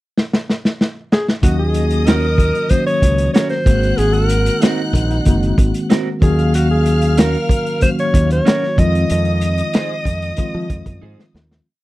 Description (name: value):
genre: lush 1970s-style soul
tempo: 94 BPM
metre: 4/4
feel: straight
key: Eb dorian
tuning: A4 = 441 Hz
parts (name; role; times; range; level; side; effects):
- vintage drum kit; drums; 0.2-11.7 s; hi-hat, kick drum, snare drum; -15 LUFS; equal; none
- warm alto saxophone; melody; 1.1-11.3 s; Eb4 to Eb5; -20 LUFS; equal; none
- warm studio string section; second line; 1.4-11.3 s; Eb5 to Gb6; -28 LUFS; left 1 dB; none
- mellow tine electric piano; accompaniment; 1.4-11.7 s; Eb3 to Gb4; -20 LUFS; left 1 dB; medium stereo tremolo
- modern bright fingered electric bass; bass; 1.4-11.6 s; Gb1 to F3; -17 LUFS; equal; none
- electric guitar through a small old amp; riff; 2.1-11.2 s; C4 to C5; -23 LUFS; right 8 dB; none
room: light reverb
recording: dry, close 1970s-style studio recording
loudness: -13 LUFS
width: side -18 dB against mid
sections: 0.0-1.4 pickup bar; 1.4-11.7 verse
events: drum fill 0.2-1.4, 11.0-11.7; fade-out 9.1-11.7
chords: 0.0 N.C.; 1.4 Ebm7; 3.7 Ab9; 6.2 Ebm7; 8.8 Fm7